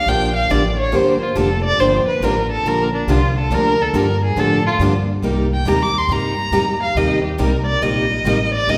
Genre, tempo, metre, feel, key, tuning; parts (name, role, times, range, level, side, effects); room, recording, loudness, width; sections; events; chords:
acoustic string swing (jazz manouche); 139 BPM; 4/4; swing 65% on 8ths; G minor; A4 = 440 Hz
warm violin; melody; 0.0-8.8 s; D4 to D6; -21 LUFS; equal
picked steel-string acoustic guitar; accompaniment; 0.1-8.8 s; C3 to G4; -24 LUFS; equal
picked steel-string acoustic guitar; accompaniment; 0.1-8.8 s; C3 to G4; -27 LUFS; equal
upright bass; bass; 0.1-8.8 s; F1 to A2; -23 LUFS; equal
wet recital hall reverb, RT60 1.4 s; recorded in a church or concert hall; -17 LUFS; mono
0.0-8.8 A section
violin solo 0.0-8.8
0.0 Gm9; 5.2 Cm7